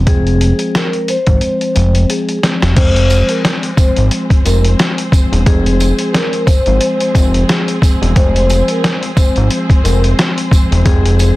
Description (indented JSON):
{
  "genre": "hip hop, boom-bap hip-hop",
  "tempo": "89 BPM",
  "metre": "4/4",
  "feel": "swing 57% on 16ths",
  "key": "F minor",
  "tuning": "A4 = 440 Hz",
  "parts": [
    { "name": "mellow tine electric piano", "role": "accompaniment", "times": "0.0-11.4 s", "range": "F3 to C4", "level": "-19 LUFS", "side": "left 2 dB", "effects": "slow stereo tremolo, high-pass filter, low-pass filter" },
    { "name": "fat analog bass", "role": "bass", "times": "0.0-11.3 s", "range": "E1 to Ab1", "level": "-12 LUFS", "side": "equal", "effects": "none" },
    { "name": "vibraphone with soft mallets", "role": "melody", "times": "0.1-11.4 s", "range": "Ab4 to C5", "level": "-19 LUFS", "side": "left 1 dB", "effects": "high-pass filter, low-pass filter, digital delay" },
    { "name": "trip hop sampler-style drum kit", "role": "drums", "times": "0.1-11.4 s", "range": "crash cymbal, hi-hat, kick drum, snare drum", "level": "-13 LUFS", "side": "equal", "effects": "none" },
    { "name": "warm symphonic string section", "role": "sustained chords", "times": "2.8-11.4 s", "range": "F3 to C5", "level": "-25 LUFS", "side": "equal", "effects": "high-pass filter, low-pass filter" },
    { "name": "tambourine", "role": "percussion", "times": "3.1-11.4 s", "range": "none", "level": "-28 LUFS", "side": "right 7 dB", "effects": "none" }
  ],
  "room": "light reverb",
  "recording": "dense, heavily limited modern master, vinyl crackle",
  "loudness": "-10 LUFS",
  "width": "side -18 dB against mid",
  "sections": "0.0-2.8 A section; 2.8-11.4 B section",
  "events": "drum fill 1.4-2.8",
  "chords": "0.0 Fm"
}